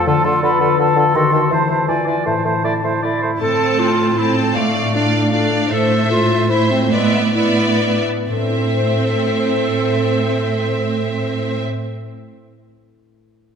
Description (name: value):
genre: classical, dramatic, fast romantic movement for symphony orchestra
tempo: 121-166 BPM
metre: 3/4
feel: straight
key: A minor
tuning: A4 = 442 Hz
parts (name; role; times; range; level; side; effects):
- mellow hollow concert flute; second line; 0.0-3.0 s; G#5 to C6; -19 LUFS; left 2 dB; none
- warm clarinet; second line; 0.0-11.6 s; G#3 to A4; -21 LUFS; right 2 dB; none
- warm oboe; second line; 0.0-3.3 s; A4 to D5; -22 LUFS; right 3 dB; none
- concert harp; arpeggios; 0.0-12.2 s; A2 to F5; -23 LUFS; left 7 dB; none
- mellow bassoon; accompaniment; 0.1-3.3 s; D3 to A3; -22 LUFS; right 3 dB; none
- clear symphonic violin section; melody; 3.4-11.6 s; E5 to A5; -25 LUFS; left 2 dB; none
- rich symphonic violin section; second line; 3.4-11.6 s; A4 to D5; -23 LUFS; left 2 dB; none
- rich symphonic viola section; accompaniment; 3.4-11.6 s; A3 to C4; -23 LUFS; right 3 dB; none
- rich symphonic cello section; bass; 3.4-11.6 s; A2; -21 LUFS; right 3 dB; none
room: wet concert hall reverb, RT60 2.0 s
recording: none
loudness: -14 LUFS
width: side -7 dB against mid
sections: 0.0-3.4 A section; 3.4-8.3 B section; 8.3-11.2 C section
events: slowing down 5.1-8.3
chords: 0.1 Bm7b5/D; 1.1 D#dim7; 1.5 Am/E; 1.9 E7b9; 2.3 Am; 4.6 Dm/A; 5.7 Am; 6.9 E7/A; 8.3 Am